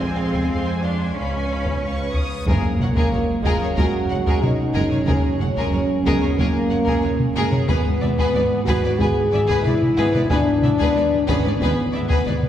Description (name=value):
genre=cinematic, epic orchestral film score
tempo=92 BPM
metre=4/4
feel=straight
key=unclear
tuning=A4 = 440 Hz
part: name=clear symphonic violin section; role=melody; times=0.0-12.3 s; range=A#4 to Eb6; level=-30 LUFS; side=left 3 dB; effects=none
part: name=rich chamber violin section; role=second line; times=0.0-12.3 s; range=G#4 to Ab5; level=-30 LUFS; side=left 2 dB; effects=none
part: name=rich symphonic viola section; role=accompaniment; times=0.0-12.3 s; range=G#3 to Db5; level=-29 LUFS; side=equal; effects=none
part: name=dark trombone section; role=sustained chords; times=0.0-12.5 s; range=F2 to C#4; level=-29 LUFS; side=right 3 dB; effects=none
part: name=mellow French horn section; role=sustained chords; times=0.0-12.5 s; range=A#3 to G#4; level=-22 LUFS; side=left 1 dB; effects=none
part: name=clear symphonic cello section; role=bass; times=0.0-12.3 s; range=F#2 to D4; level=-30 LUFS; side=right 1 dB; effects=none
part: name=rich symphonic double bass section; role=bass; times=0.0-12.3 s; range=F#1 to F2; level=-28 LUFS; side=right 2 dB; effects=none
part: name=reverse cymbal and sub drop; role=sound effects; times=2.2-5.1 s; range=none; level=-33 LUFS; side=equal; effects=none
part: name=taiko ensemble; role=drums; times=0.3-12.5 s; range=none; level=-23 LUFS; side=equal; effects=none
part: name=dark tuba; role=bass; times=2.5-12.3 s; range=F#1 to G#1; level=-29 LUFS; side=right 2 dB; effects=none
part: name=timpani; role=percussion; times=2.5-3.4 s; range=F#2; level=-30 LUFS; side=equal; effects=none
room=wet concert hall reverb, RT60 2.2 s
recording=heard from further back in the room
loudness=-17 LUFS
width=side -10 dB against mid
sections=0.0-2.5 A section; 2.5-12.5 B section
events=reverse cymbal 2.2; impact 2.5-5.1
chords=0.0 Fm; 1.2 Db7; 2.5 F#add9; 7.7 E7/G#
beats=0.51 1.17 1.82 | 2.47 3.12 3.77 4.43 | 5.08 5.73 6.38 7.04 | 7.69 8.34 8.99 9.64 | 10.29 10.95 11.60 12.25